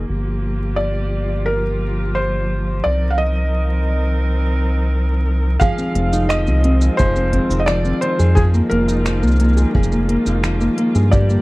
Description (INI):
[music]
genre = folktronica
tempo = 87 BPM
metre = 4/4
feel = straight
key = F dorian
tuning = A4 = 440 Hz
[part]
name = dark string quartet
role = sustained chords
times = 0.0-11.4 s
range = D3 to Bb4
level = -26 LUFS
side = equal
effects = none
[part]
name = round analog bass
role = bass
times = 0.0-11.4 s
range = F1 to G2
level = -17 LUFS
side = equal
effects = none
[part]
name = felt-muted upright piano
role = melody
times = 0.8-11.4 s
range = Ab4 to F5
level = -23 LUFS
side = equal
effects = tape echo
[part]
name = nylon-string guitar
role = arpeggios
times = 5.6-11.4 s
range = G2 to Ab4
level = -20 LUFS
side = equal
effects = tape echo
[part]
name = kick drum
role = drums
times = 5.6-11.3 s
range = none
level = -18 LUFS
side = equal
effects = none
[part]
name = organic electronic drum kit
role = drums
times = 5.6-11.4 s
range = finger snaps, hi-hat, shaker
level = -28 LUFS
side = right 1 dB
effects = none
[sound]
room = little or no reverb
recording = vinyl crackle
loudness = -15 LUFS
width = side -21 dB against mid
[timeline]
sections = 0.0-5.6 A section; 5.6-11.4 B section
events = filter sweep on string quartet 0.0-5.6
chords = 0.1 Gm7; 2.9 Cm7; 5.6 Fm7; 8.4 Bb7sus4/F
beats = | 0.09 0.78 1.47 2.16 | 2.85 3.54 4.23 4.92 | 5.61 6.30 6.99 7.68 | 8.37 9.06 9.75 10.44 | 11.13